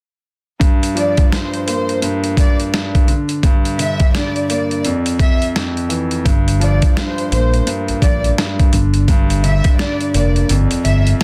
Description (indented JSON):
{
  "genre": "hip hop, boom-bap hip-hop",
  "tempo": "85 BPM",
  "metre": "4/4",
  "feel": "swing 61% on 16ths",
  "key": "G dorian",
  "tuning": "A4 = 436 Hz",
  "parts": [
    { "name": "warm grand piano", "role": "accompaniment", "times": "0.6-11.2 s", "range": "F2 to Bb3", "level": "-22 LUFS", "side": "equal", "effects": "cassette tape" },
    { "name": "boom bap sampler-style drum kit", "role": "drums", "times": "0.6-11.2 s", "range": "hi-hat, kick drum, rim click, snare drum", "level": "-18 LUFS", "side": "equal", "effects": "none" },
    { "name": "dark studio violin section", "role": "melody", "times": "1.0-11.0 s", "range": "C5 to E5", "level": "-25 LUFS", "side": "equal", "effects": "none" },
    { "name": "smooth gliding synth bass", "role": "bass", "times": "6.3-11.1 s", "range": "F1 to Bb1", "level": "-17 LUFS", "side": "equal", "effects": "none" }
  ],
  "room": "little or no reverb",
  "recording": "dense, heavily limited modern master",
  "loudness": "-16 LUFS",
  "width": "mono",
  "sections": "0.6-11.2 A section",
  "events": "kick muted 10.5-11.2",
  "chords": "0.6 Gm7; 3.1 Bb6/G; 4.8 N.C.; 6.3 Gm7; 8.7 Bb6/G; 10.5 Fsus2"
}